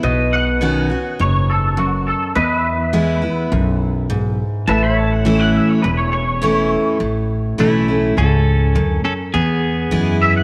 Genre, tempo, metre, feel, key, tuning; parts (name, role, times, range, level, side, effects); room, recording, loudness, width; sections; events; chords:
country; 103 BPM; 4/4; straight; A major; A4 = 439 Hz
picked steel-string acoustic guitar; accompaniment; 0.0-10.4 s; E2 to F#4; -21 LUFS; equal
pedal steel guitar; sustained chords; 0.0-7.0 s; B4 to E5; -27 LUFS; equal; lush chorus
upright bass; bass; 0.0-10.4 s; E1 to F#2; -22 LUFS; equal
twangy electric guitar; second line; 0.3-10.4 s; F#4 to B5; -23 LUFS; equal; ensemble chorus, tape echo
clean electric guitar; melody; 7.6-10.2 s; A3 to A4; -23 LUFS; equal; spring reverb, tape echo
moderate plate reverb, RT60 3.5 s; -17 LUFS; mono
0.0-7.0 A section; 7.0-10.4 B section
clean electric guitar solo 0.0-7.0
0.0 Badd9; 2.4 E; 4.7 A; 9.3 E